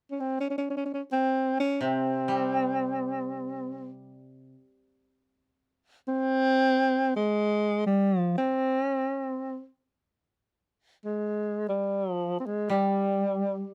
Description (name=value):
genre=japanese traditional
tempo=free time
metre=none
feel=none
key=unclear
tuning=A4 = 442 Hz
part: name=clear alto saxophone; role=melody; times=0.1-13.7 s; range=G3 to Db4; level=-28 LUFS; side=equal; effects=none
part: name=koto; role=accompaniment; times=1.8-4.5, 12.7-13.7 s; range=C3 to G3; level=-36 LUFS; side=equal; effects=none
room=light reverb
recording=close, detailed microphones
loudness=-28 LUFS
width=mono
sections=0.0-13.7 A section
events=none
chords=none